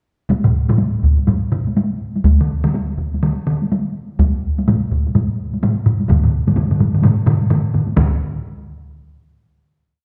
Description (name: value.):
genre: japanese traditional, taiko drum ensemble.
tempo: 122-134 BPM.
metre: 4/4.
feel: swing 60% on 16ths.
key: none.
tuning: none.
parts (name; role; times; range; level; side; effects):
taiko ensemble; percussion; 0.3-8.2 s; none; -24 LUFS; equal; none.
taiko ensemble; percussion; 0.3-8.2 s; none; -21 LUFS; equal; none.
taiko ensemble; percussion; 0.4-1.7, 4.7-8.4 s; none; -20 LUFS; equal; none.
solo taiko drums; percussion; 2.4-8.4 s; none; -22 LUFS; equal; none.
room: wet recital hall reverb, RT60 1.5 s.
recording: none.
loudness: -17 LUFS.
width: mono.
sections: 0.3-8.0 A section; 8.0-10.0 final hit.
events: speeding up 0.3-10.0.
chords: none.